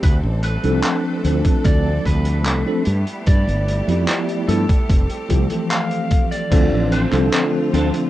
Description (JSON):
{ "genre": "vaporwave", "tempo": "74 BPM", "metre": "4/4", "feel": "straight", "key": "D dorian", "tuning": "A4 = 440 Hz", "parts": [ { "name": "lightly driven lead guitar", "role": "melody", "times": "0.0-8.1 s", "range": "A4 to F5", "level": "-28 LUFS", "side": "right 1 dB", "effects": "tape echo" }, { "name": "bright studio string section", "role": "sustained chords", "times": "0.0-8.1 s", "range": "D3 to A4", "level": "-28 LUFS", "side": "equal", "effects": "none" }, { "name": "fretless electric bass", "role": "bass", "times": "0.0-7.9 s", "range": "F1 to G2", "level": "-19 LUFS", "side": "equal", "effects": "none" }, { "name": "electronic kick drum", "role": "drums", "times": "0.0-6.7 s", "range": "none", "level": "-16 LUFS", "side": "equal", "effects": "none" }, { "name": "vintage drum kit", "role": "drums", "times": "0.0-8.1 s", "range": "crash cymbal, handclaps, hi-hat", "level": "-26 LUFS", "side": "equal", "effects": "none" }, { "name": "bell-like tine electric piano", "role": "accompaniment", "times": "0.6-8.1 s", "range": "E3 to A4", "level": "-21 LUFS", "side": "equal", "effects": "fast stereo tremolo, wide subtle chorus, tape echo" }, { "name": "clean electric guitar", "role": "riff", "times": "6.9-7.9 s", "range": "C4 to A4", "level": "-28 LUFS", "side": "right 2 dB", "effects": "ensemble chorus" } ], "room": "light reverb", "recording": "rough home demo mix, cassette tape", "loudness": "-16 LUFS", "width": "side -14 dB against mid", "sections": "0.0-6.5 A section; 6.5-8.1 B section", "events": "none", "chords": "0.0 Dm7; 2.9 G13; 4.9 Fmaj9; 6.5 Dm7" }